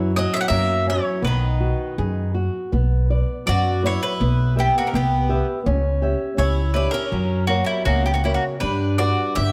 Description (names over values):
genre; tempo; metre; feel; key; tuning
fado-style ballad; 82 BPM; 2/4; rubato; B harmonic minor; A4 = 440 Hz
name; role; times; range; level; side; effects
mandolin; melody; 0.0-9.5 s; E4 to F#5; -26 LUFS; equal; none
picked twelve-string acoustic guitar; second line; 0.0-9.5 s; D#3 to G4; -30 LUFS; equal; none
nylon-string guitar; accompaniment; 0.0-9.5 s; C#3 to F#5; -27 LUFS; equal; none
upright bass; bass; 0.0-9.5 s; B1 to G2; -24 LUFS; equal; none
room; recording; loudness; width
light reverb; close, detailed microphones; -21 LUFS; mono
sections
0.0-2.7 A section; 2.7-9.5 B section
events
none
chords
0.0 F#5; 1.2 B6; 2.7 Bmadd9; 4.2 Em/B; 5.7 C#dim; 7.1 F#; 8.6 Gmaj7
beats
0.51 | 1.24 1.98 | 2.74 3.48 | 4.21 4.94 | 5.66 6.38 | 7.12 7.86 | 8.62 9.37